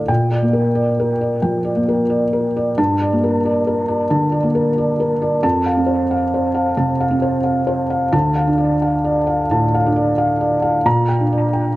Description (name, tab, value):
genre	neoclassical minimalist piano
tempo	89 BPM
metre	4/4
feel	rubato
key	unclear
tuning	A4 = 445 Hz
part	felt-muted upright piano	solo	0.0-11.8 s	D2 to Bb5	-15 LUFS	equal	dub echo
room	light reverb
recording	echo-heavy mix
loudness	-15 LUFS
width	side -17 dB against mid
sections	0.0-11.8 A section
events	none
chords	0.1 Bb6; 2.8 Gmadd9; 5.4 F; 8.1 Dm; 10.9 Bb6